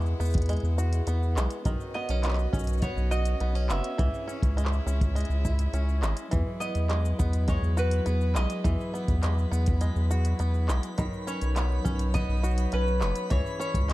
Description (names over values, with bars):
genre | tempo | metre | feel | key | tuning
folktronica | 103 BPM | 4/4 | straight | E major | A4 = 439 Hz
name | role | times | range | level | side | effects
warm string quartet | sustained chords | 0.0-13.9 s | E3 to F#5 | -36 LUFS | left 1 dB | none
bluegrass banjo | arpeggios | 0.0-13.9 s | D#3 to F#4 | -36 LUFS | right 1 dB | ping-pong delay
round analog bass | bass | 0.0-13.9 s | F#1 to E2 | -26 LUFS | equal | tube saturation
organic electronic drum kit | drums | 0.0-13.9 s | handclaps, hi-hat, shaker | -37 LUFS | equal | overdrive
kick drum | drums | 0.3-13.9 s | none | -29 LUFS | equal | none
mandolin | melody | 1.9-13.9 s | B4 to E5 | -34 LUFS | right 1 dB | ping-pong delay
twinkling granular texture | texture | 7.2-13.9 s | B5 | -44 LUFS | right 4 dB | built-in reverb
room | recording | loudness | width
studio reverb | dark, warm production | -24 LUFS | side -17 dB against mid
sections
0.0-13.9 A section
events
none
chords
0.0 Eadd9; 1.7 Badd9; 4.0 C#m; 6.3 Eadd9; 11.0 Badd9; 13.3 C#m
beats
0.49 1.08 | 1.66 2.24 2.82 3.41 | 3.99 4.57 5.15 5.74 | 6.32 6.90 7.48 8.07 | 8.65 9.23 9.81 10.40 | 10.98 11.56 12.14 12.73 | 13.31 13.89